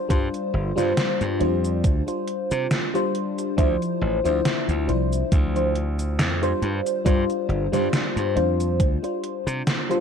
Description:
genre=vaporwave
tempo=69 BPM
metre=4/4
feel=swing 55% on 16ths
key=unclear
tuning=A4 = 440 Hz
part: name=FM electric piano with soft pad layer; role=accompaniment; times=0.0-10.0 s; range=F3 to C5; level=-24 LUFS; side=left 2 dB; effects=phaser, wide subtle chorus, analog delay
part: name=glassy slap bass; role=bass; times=0.1-9.6 s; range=G1 to C3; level=-25 LUFS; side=equal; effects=tube saturation
part: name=electronic kick drum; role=drums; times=0.1-9.0 s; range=none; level=-20 LUFS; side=equal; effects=overdrive
part: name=gated 80s digital drum machine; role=drums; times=0.1-10.0 s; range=cabasa, hi-hat, snare drum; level=-26 LUFS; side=right 1 dB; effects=gated reverb, gated reverb snare, overdrive
room=light reverb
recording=dark, warm production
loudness=-20 LUFS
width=side -7 dB against mid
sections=0.0-10.0 A section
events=none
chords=0.0 G7sus4; 3.6 Dm9; 6.6 G7sus4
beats=| 0.10 0.97 1.84 2.71 | 3.58 4.45 5.32 6.19 | 7.06 7.93 8.80 9.67

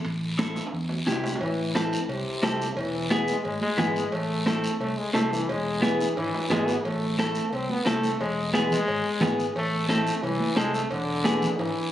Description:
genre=latin, cumbia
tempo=177 BPM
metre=4/4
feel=straight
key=A harmonic minor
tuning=A4 = 440 Hz
part: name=fingered electric bass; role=bass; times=0.0-11.7 s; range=E1 to E2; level=-33 LUFS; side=equal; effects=none
part: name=congas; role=percussion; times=0.0-11.6 s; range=none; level=-30 LUFS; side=right 1 dB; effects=none
part: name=timbales and cowbell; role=percussion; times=0.0-11.8 s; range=none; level=-36 LUFS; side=right 2 dB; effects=none
part: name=guiro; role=percussion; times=0.1-11.9 s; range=none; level=-37 LUFS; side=left 1 dB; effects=none
part: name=electric guitar through a small old amp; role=accompaniment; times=0.4-11.5 s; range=B3 to A4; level=-28 LUFS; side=equal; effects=none
part: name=brilliant trombone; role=second line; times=1.4-11.9 s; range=C3 to C4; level=-28 LUFS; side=left 1 dB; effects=none
room=moderate plate reverb, RT60 2.7 s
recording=recorded on a phone in the room, club reverb, compression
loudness=-23 LUFS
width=side -12 dB against mid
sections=0.0-1.4 A section; 1.4-11.9 B section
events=drum fill 0.6-1.4, 6.0-6.9, 11.6-11.9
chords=0.1 Am; 2.8 E; 4.1 Am; 5.5 E; 6.9 Am; 8.2 E; 9.6 Am; 10.9 E7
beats=| 0.05 0.39 0.73 1.07 | 1.41 1.75 2.09 2.43 | 2.77 3.11 3.45 3.79 | 4.13 4.47 4.81 5.15 | 5.49 5.83 6.17 6.51 | 6.85 7.19 7.53 7.87 | 8.21 8.55 8.88 9.22 | 9.56 9.90 10.24 10.58 | 10.92 11.26 11.60

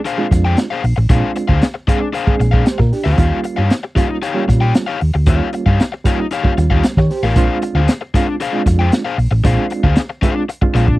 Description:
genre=funk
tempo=115 BPM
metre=4/4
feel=straight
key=Bb mixolydian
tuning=A4 = 441 Hz
part: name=overdriven electric guitar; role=accompaniment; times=0.0-10.9 s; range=D4 to G5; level=-20 LUFS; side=left 5 dB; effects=none
part: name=crunchy breakbeat drum kit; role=drums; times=0.1-11.0 s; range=hi-hat, kick drum, snare drum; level=-15 LUFS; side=equal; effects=none
part: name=overdriven reed electric piano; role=stabs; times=0.2-11.0 s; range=G3 to Db5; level=-20 LUFS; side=right 4 dB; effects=fast tremolo
part: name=hollow-body short-scale fingered electric bass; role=bass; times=0.3-11.0 s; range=A1 to Eb3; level=-14 LUFS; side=equal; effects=none
room=little or no reverb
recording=dry, close 1970s-style studio recording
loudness=-13 LUFS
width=side -18 dB against mid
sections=0.0-11.0 A section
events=none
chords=0.0 Bb9; 3.2 Eb9; 7.4 Bb9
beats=0.05 0.58 | 1.10 1.62 2.14 2.66 | 3.19 3.71 4.23 4.75 | 5.27 5.79 6.32 6.84 | 7.36 7.88 8.40 8.92 | 9.45 9.97 10.49

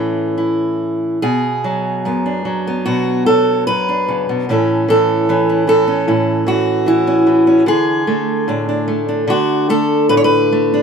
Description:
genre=folk, solo fingerstyle acoustic guitar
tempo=74 BPM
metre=4/4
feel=rubato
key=unclear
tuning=A4 = 443 Hz
part: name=fingerpicked steel-string acoustic guitar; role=solo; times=0.0-10.8 s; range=F#2 to C#5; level=-13 LUFS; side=equal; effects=none
room=light reverb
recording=minimal, uncompressed stereo recording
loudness=-13 LUFS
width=side -6 dB against mid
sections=0.0-1.2 A section; 1.2-10.8 B section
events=none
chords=0.0 A; 1.2 Bm; 4.5 A; 7.7 Dadd9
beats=0.37 | 1.23 2.05 2.87 3.68 | 4.49 5.29 6.09 6.88 | 7.68 8.49 9.29 10.11

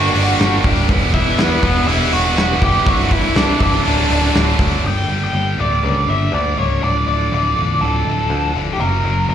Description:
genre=quiet-loud alternative rock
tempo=122 BPM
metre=4/4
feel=straight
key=unclear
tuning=A4 = 436 Hz
part: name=octave-fuzz lead guitar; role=melody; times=0.0-9.3 s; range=B3 to G5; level=-19 LUFS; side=equal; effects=distortion, slapback echo
part: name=overdriven electric guitar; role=riff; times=0.0-4.8 s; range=C2 to G4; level=-20 LUFS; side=right 12 dB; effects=slapback echo
part: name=scooped high-gain guitar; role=riff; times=0.0-9.3 s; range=C2 to G4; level=-23 LUFS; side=left 11 dB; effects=distortion
part: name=picked electric bass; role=bass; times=0.0-9.3 s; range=B0 to E2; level=-19 LUFS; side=equal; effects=none
part: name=loose indie drum kit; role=drums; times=0.2-4.7 s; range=hi-hat, kick drum, snare drum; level=-19 LUFS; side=equal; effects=none
part: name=twelve-string electric guitar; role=arpeggios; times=4.8-9.3 s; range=D2 to G4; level=-26 LUFS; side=right 1 dB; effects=tremolo, slapback echo
room=little or no reverb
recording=live gig heard through the venue's PA, club reverb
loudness=-14 LUFS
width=side -9 dB against mid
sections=0.0-4.8 A section; 4.8-9.3 B section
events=none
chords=0.0 Gm; 0.9 Em; 2.9 C; 3.9 D; 4.8 Gm; 6.8 Dm; 8.8 F#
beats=0.40 | 0.90 1.39 1.88 2.38 | 2.87 3.36 3.85 4.35 | 4.84 5.34 5.83 6.33 | 6.82 7.31 7.81 8.30 | 8.80 9.29

